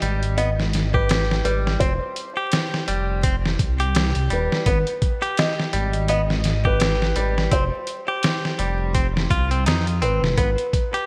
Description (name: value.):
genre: trip hop.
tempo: 84 BPM.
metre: 4/4.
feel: swing 57% on 16ths.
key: unclear.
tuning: A4 = 439 Hz.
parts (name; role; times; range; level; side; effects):
felt-muted upright piano; melody; 0.0-11.1 s; Cb5 to Eb5; -29 LUFS; equal; tape echo.
direct-recorded clean electric guitar; arpeggios; 0.0-11.1 s; G3 to G4; -29 LUFS; equal; warbly pitch drift, tape echo.
dark detuned saw bass; bass; 0.0-10.6 s; Eb1 to F2; -25 LUFS; equal; none.
dusty soul sampler-style drum kit; drums; 0.0-11.1 s; hi-hat, kick drum, snare drum; -25 LUFS; equal; studio reverb.
room: light reverb.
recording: bright 1980s-style digital production, vinyl crackle.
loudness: -21 LUFS.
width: mono.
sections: 0.0-11.1 A section.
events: none.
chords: 0.0 Abm; 1.8 F5; 4.7 Abm; 7.5 F5; 10.4 Abm.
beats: 0.38 1.09 | 1.80 2.52 3.23 3.95 | 4.66 5.38 6.09 6.80 | 7.52 8.23 8.95 9.66 | 10.38.